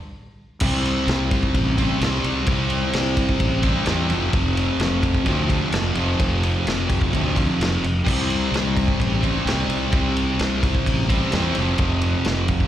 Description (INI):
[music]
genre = garage rock duo or trio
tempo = 129 BPM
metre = 4/4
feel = straight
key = unclear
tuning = A4 = 444 Hz
[part]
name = fuzz guitar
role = riff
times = 0.6-12.7 s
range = F2 to C4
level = -22 LUFS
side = equal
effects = distortion
[part]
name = fuzz fingered electric bass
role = bass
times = 0.6-12.6 s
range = F1 to E2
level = -23 LUFS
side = equal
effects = overdrive, tube saturation
[part]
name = vintage drum kit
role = drums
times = 0.6-12.7 s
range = crash cymbal, kick drum, ride cymbal, snare drum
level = -24 LUFS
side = equal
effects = none
[sound]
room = studio reverb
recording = live gig heard through the venue's PA, recital hall reverb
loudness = -18 LUFS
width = side -12 dB against mid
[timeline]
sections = 0.6-12.7 A section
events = stop 0.0-0.6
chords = 0.0 N.C.; 0.6 C5; 4.1 F5; 8.1 C5; 11.6 F5